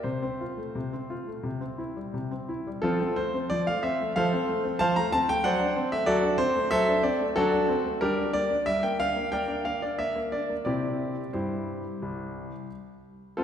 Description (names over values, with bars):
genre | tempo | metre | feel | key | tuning
classical-period piano sonatina | 85-96 BPM | 4/4 | rubato | F major | A4 = 439 Hz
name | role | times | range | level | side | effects
clear grand piano | solo | 0.0-13.4 s | C2 to Bb5 | -25 LUFS | equal | none
room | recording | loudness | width
wet concert hall reverb, RT60 2.3 s | recorded in a church or concert hall | -25 LUFS | side -8 dB against mid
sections
0.0-2.8 A section; 2.8-13.4 B section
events
none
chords
0.1 F/C; 1.4 C; 2.8 F; 5.4 D7/F#; 8.0 Gm; 9.3 Bb6; 10.7 C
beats
| 0.05 0.76 1.45 2.14 | 2.83 3.49 4.14 4.79 | 5.43 6.07 6.70 7.35 | 8.00 8.65 9.30 9.98 | 10.66 11.33 12.02 12.70 | 13.38